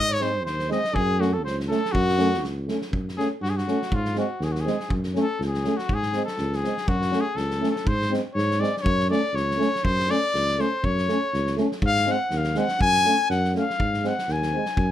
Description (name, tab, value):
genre	balkan folk, Balkan brass band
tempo	122 BPM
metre	2/4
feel	swing 56% on 16ths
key	F# hungarian minor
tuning	A4 = 440 Hz
part	clear trumpet	melody	0.0-14.9 s	E#4 to G#5	-25 LUFS	left 2 dB	none
part	breathy flugelhorn	second line	0.0-2.4 s	F#4 to D#5	-30 LUFS	right 4 dB	none
part	breathy tuba	bass	0.0-14.9 s	C#2 to G#2	-26 LUFS	equal	none
part	mellow French horn	accompaniment	0.2-14.6 s	B#3 to C#4	-29 LUFS	left 3 dB	none
part	warm euphonium	accompaniment	0.2-14.6 s	G#3 to A3	-28 LUFS	right 4 dB	none
part	loose indie drum kit	percussion	0.2-14.9 s	kick drum, snare drum	-31 LUFS	equal	none
room	light reverb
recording	none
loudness	-21 LUFS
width	side -11 dB against mid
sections	0.0-2.9 A section; 2.9-14.9 B section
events	trumpet solo 2.9-14.9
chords	0.0 G#; 1.0 F#m; 3.9 G#; 4.9 F#m; 5.9 G#; 6.9 F#m; 7.9 G#; 8.9 F#m; 11.8 G#; 12.8 F#m; 13.8 G#